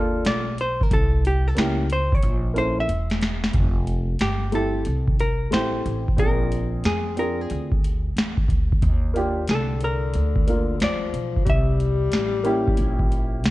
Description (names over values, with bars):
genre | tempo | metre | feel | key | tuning
hip hop, jazz-hop | 91 BPM | 4/4 | swing 66% on 16ths | F major | A4 = 438 Hz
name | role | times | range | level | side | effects
dark upright piano | accompaniment | 0.0-13.4 s | A3 to Bb4 | -26 LUFS | equal | none
upright bass | bass | 0.0-13.5 s | E1 to F2 | -25 LUFS | equal | none
booming analog drum machine | drums | 0.2-13.5 s | hi-hat, kick drum, snare drum | -23 LUFS | equal | none
hollow-body jazz guitar | melody | 0.3-13.4 s | G4 to E5 | -27 LUFS | left 1 dB | none
breathy tenor saxophone | second line | 9.5-13.4 s | D3 to G3 | -28 LUFS | left 7 dB | none
room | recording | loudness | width
little or no reverb | cassette tape | -20 LUFS | side -17 dB against mid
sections
0.0-3.5 A section; 3.5-13.5 B section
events
hollow-body jazz guitar solo 0.0-3.5; drum fill 2.2-3.5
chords
0.0 Ebmaj7sus2; 0.9 C7b9; 3.5 Fmaj9; 6.2 Bb7; 8.8 Ebmaj7sus2; 11.5 C7b9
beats
0.25 | 0.91 1.57 2.23 2.89 | 3.55 4.21 4.87 5.53 | 6.19 6.85 7.51 8.16 | 8.82 9.48 10.14 10.80 | 11.46 12.12 12.78 13.44